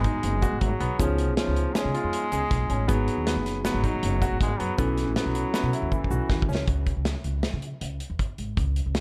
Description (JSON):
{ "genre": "progressive instrumental, band music in an uneven meter", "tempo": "158 BPM", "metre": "5/4", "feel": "straight", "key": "unclear", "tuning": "A4 = 440 Hz", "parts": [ { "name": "brilliant trombone", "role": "second line", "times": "0.0-6.5 s", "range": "E3 to G#3", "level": "-34 LUFS", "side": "equal", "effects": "tape echo" }, { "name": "mellow tine electric piano", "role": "accompaniment", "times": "0.0-6.6 s", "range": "B3 to A4", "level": "-34 LUFS", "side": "equal", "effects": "overdrive" }, { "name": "clear concert grand piano", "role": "arpeggios", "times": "0.0-6.6 s", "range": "B3 to G#4", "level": "-35 LUFS", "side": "equal", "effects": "tape echo" }, { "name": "upright bass", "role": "bass", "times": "0.0-9.0 s", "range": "F#1 to C#3", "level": "-30 LUFS", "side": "equal", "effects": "none" }, { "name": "modern studio drum kit", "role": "drums", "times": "0.0-9.0 s", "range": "hi-hat, kick drum, snare drum", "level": "-31 LUFS", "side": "equal", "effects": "none" }, { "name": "tube shaker", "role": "percussion", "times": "0.4-6.6 s", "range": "none", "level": "-48 LUFS", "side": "equal", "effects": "none" } ], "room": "small room ambience", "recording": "dark, warm production", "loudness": "-26 LUFS", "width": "mono", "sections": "0.0-6.7 A section; 6.7-9.0 B section", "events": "drum fill 5.9-6.7", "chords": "0.0 G#m7; 1.0 C#7; 2.9 G#m7; 4.8 B7sus4; 6.7 N.C." }